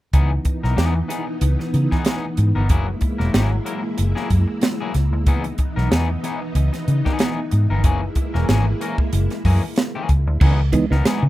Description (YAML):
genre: funk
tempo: 93 BPM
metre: 4/4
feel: swing 56% on 16ths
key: C# dorian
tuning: A4 = 440 Hz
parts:
  - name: electric guitar at the edge of break-up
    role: accompaniment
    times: 0.1-11.3 s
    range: E3 to A#4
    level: -27 LUFS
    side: left 4 dB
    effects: none
  - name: string machine, full ensemble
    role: sustained chords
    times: 0.1-10.4 s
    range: E3 to E4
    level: -27 LUFS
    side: equal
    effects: ensemble chorus
  - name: vintage muted fingered electric bass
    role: bass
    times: 0.1-11.3 s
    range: E1 to C#3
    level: -18 LUFS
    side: equal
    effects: none
  - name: crisp fusion drum kit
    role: drums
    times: 0.1-11.2 s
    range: crash cymbal, hi-hat, kick drum, snare drum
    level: -21 LUFS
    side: equal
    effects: none
  - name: electric guitar at the edge of break-up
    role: riff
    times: 10.4-11.2 s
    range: E3 to G#3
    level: -26 LUFS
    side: right 4 dB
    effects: spring reverb
  - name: mellow tonewheel organ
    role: stabs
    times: 10.4-11.0 s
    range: C#3 to D#4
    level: -20 LUFS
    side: right 4 dB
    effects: slow rotary speaker
room: little or no reverb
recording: rough home demo mix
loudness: -17 LUFS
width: side -16 dB against mid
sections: 0.1-10.4 A section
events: none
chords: 0.1 C#m9; 2.7 F#9; 5.3 C#m9; 7.8 F#9; 10.4 C#m9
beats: | 0.13 0.78 1.42 2.06 | 2.70 3.34 3.99 4.63 | 5.27 5.91 6.56 7.20 | 7.84 8.48 9.13 9.77 | 10.41 11.05